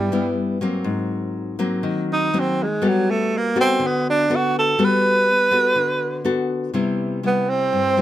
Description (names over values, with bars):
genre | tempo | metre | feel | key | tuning
bossa nova | 122 BPM | 4/4 | straight | G major | A4 = 444 Hz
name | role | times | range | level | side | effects
breathy tenor saxophone | melody | 0.0-8.0 s | F#3 to B4 | -18 LUFS | right 2 dB | none
nylon-string guitar | accompaniment | 0.0-8.0 s | G2 to A4 | -21 LUFS | left 3 dB | none
bright reedy alto flute | second line | 7.2-8.0 s | B4 to C5 | -26 LUFS | left 1 dB | none
room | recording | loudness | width
little or no reverb | close, detailed microphones | -18 LUFS | side -12 dB against mid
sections
0.0-6.7 A section; 6.7-8.0 B section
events
tenor saxophone solo 0.0-6.7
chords
0.0 Cmaj7; 0.9 Ab9; 2.8 Gmaj9; 6.7 Cmaj7